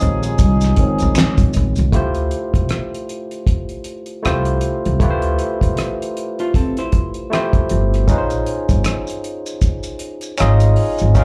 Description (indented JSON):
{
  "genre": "R&B, neo-soul",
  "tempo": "78 BPM",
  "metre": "4/4",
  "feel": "swing 59% on 16ths",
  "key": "unclear",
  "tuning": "A4 = 440 Hz",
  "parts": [
    { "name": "barky tine electric piano", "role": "accompaniment", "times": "0.0-11.2 s", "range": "Eb3 to Eb5", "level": "-24 LUFS", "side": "equal", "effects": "overdrive, slapback echo" },
    { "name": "warm horn section", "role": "stabs", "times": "0.0-1.5 s", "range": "F3 to Ab4", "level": "-27 LUFS", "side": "equal", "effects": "slapback echo" },
    { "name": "upright bass", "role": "bass", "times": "0.0-11.2 s", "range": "G1 to D2", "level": "-19 LUFS", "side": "equal", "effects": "none" },
    { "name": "cloth-damped thuddy drum kit", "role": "drums", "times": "0.0-11.2 s", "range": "handclaps, hi-hat, kick drum, rim click, snare drum", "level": "-20 LUFS", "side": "equal", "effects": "none" },
    { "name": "maracas and finger snaps", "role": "percussion", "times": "0.0-1.9, 8.1-11.2 s", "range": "none", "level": "-34 LUFS", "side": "equal", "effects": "none" },
    { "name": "hollow-body jazz guitar", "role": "second line", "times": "6.4-7.9 s", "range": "A3 to C5", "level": "-26 LUFS", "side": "equal", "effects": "slapback echo" }
  ],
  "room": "little or no reverb",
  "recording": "live gig heard through the venue's PA, club reverb",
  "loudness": "-17 LUFS",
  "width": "mono",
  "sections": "0.0-1.9 A section; 1.9-11.2 B section",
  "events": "tine electric piano solo 0.0-1.9",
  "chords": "0.0 Bbm11; 1.9 Dm11 (rootless); 8.1 Bbm11"
}